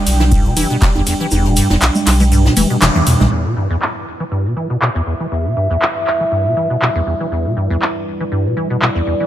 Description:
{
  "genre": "acid house",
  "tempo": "120 BPM",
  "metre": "4/4",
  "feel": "swing 54% on 16ths",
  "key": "E minor",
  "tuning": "A4 = 440 Hz",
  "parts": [
    { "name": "dark analog pad", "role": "sustained chords", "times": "0.0-9.3 s", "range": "G3 to G5", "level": "-23 LUFS", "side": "right 1 dB", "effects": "chorus, sidechain pumping" },
    { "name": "warm sub bass", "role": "bass", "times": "0.1-3.3 s", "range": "E1 to E2", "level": "-15 LUFS", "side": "equal", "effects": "sidechain pumping" },
    { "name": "booming analog drum machine", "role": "drums", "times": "0.1-8.9 s", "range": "cabasa, congas, handclaps, hi-hat, ride cymbal, toms", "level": "-17 LUFS", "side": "right 1 dB", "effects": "low-pass filter on cymbals, low-pass filter on perc, low-pass filter on hats, low-pass filter on snare, low-pass filter on toms" },
    { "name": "jazz brush drum kit", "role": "drums", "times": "0.1-3.3 s", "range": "hi-hat, shaker, snare drum", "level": "-25 LUFS", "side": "left 2 dB", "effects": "high-pass filter on hats, high-pass filter on snare, high-pass filter on perc, high-pass filter on room" },
    { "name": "acid bass, square", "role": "riff", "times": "0.2-9.3 s", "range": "E2 to E3", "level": "-18 LUFS", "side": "equal", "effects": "wide subtle chorus, cassette tape, sidechain pumping, ping-pong delay" },
    { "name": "electronic kick drum", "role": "drums", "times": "0.3-0.9 s", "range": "none", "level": "-16 LUFS", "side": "equal", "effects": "none" },
    { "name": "warbly tape-like pad", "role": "texture", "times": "3.9-9.3 s", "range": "E4 to E5", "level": "-21 LUFS", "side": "equal", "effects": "chorus, built-in reverb, sidechain pumping" }
  ],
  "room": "moderate plate reverb, RT60 2.8 s",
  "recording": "none",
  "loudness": "-13 LUFS",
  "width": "side -12 dB against mid",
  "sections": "0.0-3.3 A section; 3.3-9.3 B section",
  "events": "drop 0.0-3.3; kick drops out 1.3-3.3; drum fill 2.6-3.3; band accent 2.8; filter sweep on analog synth pad 3.3-9.3",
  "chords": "0.0 Em7",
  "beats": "0.32 0.82 | 1.32 1.82 2.32 2.82 | 3.32 3.82 4.32 4.82 | 5.32 5.82 6.32 6.82 | 7.32 7.82 8.32 8.82"
}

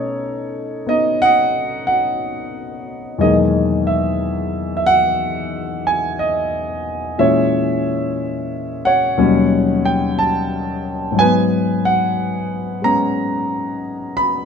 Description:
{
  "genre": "solo jazz",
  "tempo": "60 BPM",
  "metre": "4/4",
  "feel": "swing 67% on 8ths",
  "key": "unclear",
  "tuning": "A4 = 441 Hz",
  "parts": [
    { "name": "warm grand piano", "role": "solo", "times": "0.0-14.4 s", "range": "D#2 to B5", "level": "-16 LUFS", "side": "left 1 dB", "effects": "none" }
  ],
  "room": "light reverb",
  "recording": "minimal, uncompressed stereo recording",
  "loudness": "-16 LUFS",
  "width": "side -6 dB against mid",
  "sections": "0.0-14.4 A section",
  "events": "none",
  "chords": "0.0 B9; 3.2 Emaj9#11; 7.2 A#m7b5; 9.2 D#7alt; 11.2 G#m9",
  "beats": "0.22 1.22 2.22 | 3.21 4.21 5.20 6.20 | 7.20 8.19 9.19 10.18 | 11.18 12.17 13.17 14.16"
}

